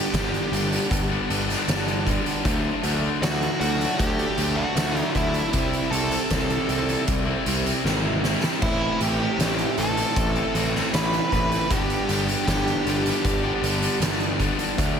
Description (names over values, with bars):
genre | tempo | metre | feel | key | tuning
quiet-loud alternative rock | 78 BPM | 4/4 | straight | unclear | A4 = 441 Hz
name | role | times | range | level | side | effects
dark smooth lead guitar | melody | 0.0-14.0 s | E4 to B5 | -28 LUFS | right 1 dB | overdrive, slapback echo, analog delay
distorted electric guitar | riff | 0.0-15.0 s | G2 to E4 | -29 LUFS | right 10 dB | distortion, slapback echo
fuzz guitar | riff | 0.0-15.0 s | G2 to E4 | -28 LUFS | left 11 dB | distortion, slapback echo
fuzz picked electric bass | bass | 0.1-15.0 s | G1 to D2 | -27 LUFS | equal | overdrive
oversized low-tuned drum kit | drums | 0.1-15.0 s | crash cymbal, hi-hat, kick drum, snare drum | -26 LUFS | equal | none
room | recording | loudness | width
moderate lush hall reverb, RT60 2.2 s | big arena sound | -21 LUFS | side -7 dB against mid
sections
0.0-15.0 A section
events
drum fill 7.9-8.6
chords
0.0 G; 2.4 Dsus4; 5.5 C; 8.6 Amadd9; 11.7 G